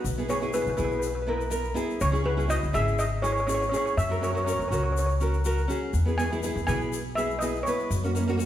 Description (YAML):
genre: calypso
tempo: 122 BPM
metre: 4/4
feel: straight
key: unclear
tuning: A4 = 440 Hz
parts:
  - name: steel pan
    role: melody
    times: 0.0-8.5 s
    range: B4 to G#5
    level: -29 LUFS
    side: equal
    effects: none
  - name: nylon-string guitar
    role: accompaniment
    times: 0.0-8.5 s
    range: A#3 to B4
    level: -29 LUFS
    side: right 1 dB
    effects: none
  - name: upright bass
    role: bass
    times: 0.0-8.5 s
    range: G#1 to F#2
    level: -28 LUFS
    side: equal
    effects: none
  - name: tube shaker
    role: percussion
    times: 0.1-8.5 s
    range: none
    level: -41 LUFS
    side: left 8 dB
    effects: none
room: wet recital hall reverb, RT60 1.6 s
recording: heard from further back in the room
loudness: -24 LUFS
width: side -11 dB against mid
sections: 0.0-8.5 A section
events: none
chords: 0.0 E/B; 2.0 C#m; 4.0 F#; 5.9 E; 7.9 F#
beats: | 0.04 0.54 1.03 1.52 | 2.01 2.50 2.99 3.48 | 3.98 4.47 4.96 5.45 | 5.94 6.43 6.92 7.41 | 7.90 8.39